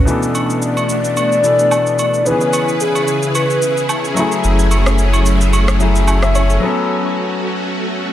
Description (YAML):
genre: amapiano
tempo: 110 BPM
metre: 4/4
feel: swing 55% on 16ths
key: B dorian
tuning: A4 = 440 Hz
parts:
  - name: string machine, violas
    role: sustained chords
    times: 0.0-8.1 s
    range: C#3 to B4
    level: -20 LUFS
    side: equal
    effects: ensemble chorus
  - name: warm grand piano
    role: accompaniment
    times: 0.1-8.1 s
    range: B2 to G#5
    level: -19 LUFS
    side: left 2 dB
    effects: none
  - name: electronic shaker and rim click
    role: drums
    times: 0.1-6.6 s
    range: none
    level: -23 LUFS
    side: equal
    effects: vintage 12-bit sampler grit
  - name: agogo bells and woodblock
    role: percussion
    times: 0.3-6.5 s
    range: none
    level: -24 LUFS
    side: right 4 dB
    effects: none
  - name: hollow clarinet-like synth lead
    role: melody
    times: 0.6-4.2 s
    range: G#4 to D5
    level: -17 LUFS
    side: left 1 dB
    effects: chorus, tape echo
  - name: saturated sub bass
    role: bass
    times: 4.4-6.6 s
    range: F#1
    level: -14 LUFS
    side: equal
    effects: none
room: light reverb, digital ambience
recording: none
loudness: -13 LUFS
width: side -12 dB against mid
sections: 0.1-8.1 A section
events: break 6.6-8.1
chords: 0.1 Bm7; 2.3 C#m7; 4.2 F#m9; 6.6 A69